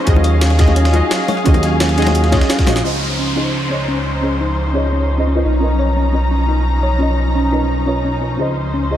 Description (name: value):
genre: liquid drum and bass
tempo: 173 BPM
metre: 4/4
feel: straight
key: Db major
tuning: A4 = 439 Hz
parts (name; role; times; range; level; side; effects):
- deep mellow chord stab; accompaniment; 0.0-9.0 s; Db4 to Eb5; -21 LUFS; equal; chorus, diffuse ambient delay
- muted studio string section; sustained chords; 0.0-9.0 s; F3 to Bb5; -22 LUFS; left 1 dB; sidechain pumping, low-pass filter
- smooth synth bass; bass; 0.1-9.0 s; Bb1 to Eb2; -17 LUFS; equal; none
- dusty soul sampler-style drum kit; drums; 0.1-2.8 s; hi-hat, snare drum; -27 LUFS; equal; high-pass filter on hats, studio ambience, high-pass filter on snare
- electronic kick drum; drums; 0.1-2.7 s; none; -14 LUFS; equal; studio ambience
- jungle sampler-style drum kit; drums; 0.1-2.8 s; hi-hat, snare drum; -24 LUFS; equal; studio ambience
- thumb-piano-like synth pluck; arpeggios; 0.2-8.9 s; Db4 to Db5; -23 LUFS; equal; chorus, diffuse ambient delay
- bongos; percussion; 0.2-2.7 s; none; -26 LUFS; left 5 dB; none
- downlifter; sound effects; 2.8-5.6 s; none; -26 LUFS; equal; none
room: moderate lush hall reverb, RT60 1.9 s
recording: dreamy mix soaked in reverb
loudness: -13 LUFS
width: side -11 dB against mid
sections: 0.0-2.8 A section; 2.8-9.0 B section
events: drop 0.0-2.8; drum fill 2.7; filter sweep on synth stab 2.8-9.0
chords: 0.1 Ebm11; 2.8 Dbmaj9; 5.4 Cbmaj9#11; 8.4 Dbmaj9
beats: | 0.07 0.42 0.76 1.11 | 1.46 1.80 2.15 2.50 | 2.84 3.19 3.54 3.88 | 4.23 4.58 4.92 5.27 | 5.62 5.97 6.31 6.66 | 7.01 7.35 7.70 8.05 | 8.39 8.74